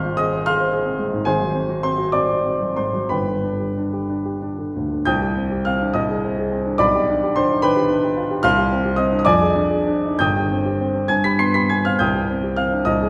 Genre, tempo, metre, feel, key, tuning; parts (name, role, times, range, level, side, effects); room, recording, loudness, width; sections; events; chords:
classical, romantic character piece for solo piano; 58-75 BPM (dotted quarters); 6/8; rubato; C minor; A4 = 444 Hz
warm baby grand piano; solo; 0.0-13.1 s; G1 to C7; -20 LUFS; equal
wet concert hall reverb, RT60 1.7 s; heard from further back in the room; -20 LUFS; mono
0.0-5.1 A section; 5.1-13.1 B section
0.0 Fm/Ab; 1.3 Ab7; 3.1 G; 5.1 Cm; 5.9 Cmadd9; 6.8 G7/B; 8.4 Cm; 9.3 Ddim/F; 10.2 Cm/G; 11.1 G; 12.0 Cm